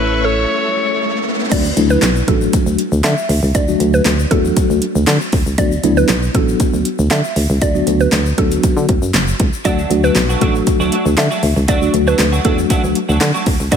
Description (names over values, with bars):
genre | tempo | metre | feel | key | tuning
dance-pop | 118 BPM | 4/4 | straight | D major | A4 = 440 Hz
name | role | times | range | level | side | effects
bright alto saxophone | melody | 0.0-1.3 s | B4 to C#5 | -20 LUFS | left 3 dB | slapback echo, ping-pong delay
mellow tine electric piano | accompaniment | 0.0-13.8 s | F#3 to A4 | -19 LUFS | left 2 dB | medium stereo tremolo, sidechain pumping, slapback echo
string machine, violins | sustained chords | 0.0-1.5 s | A4 to C#6 | -24 LUFS | equal | ensemble chorus, sidechain pumping
solid FM bass | bass | 0.0-13.8 s | F#1 to D3 | -17 LUFS | equal | sidechain pumping
riser | sound effects | 0.3-1.5 s | none | -25 LUFS | right 1 dB | none
mallet-like synth pluck | melody | 0.2-13.8 s | A4 to E5 | -22 LUFS | right 2 dB | chorus, sidechain pumping, slapback echo, ping-pong delay
pop drum kit | drums | 1.5-13.8 s | crash cymbal, handclaps, hi-hat, kick drum, snare drum | -17 LUFS | equal | overdrive
tube shaker | percussion | 1.5-13.8 s | none | -32 LUFS | left 11 dB | none
twelve-string electric guitar | riff | 9.6-13.8 s | F#3 to F#4 | -22 LUFS | right 4 dB | analog chorus, slapback echo
room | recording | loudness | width
light reverb, digital ambience | none | -12 LUFS | side -8 dB against mid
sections
0.0-1.5 A section; 1.5-13.8 B section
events
riser 0.3-1.5; break 0.5-1.5; drop 1.5-13.8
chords
0.0 A; 1.5 D; 5.6 Bm; 9.7 D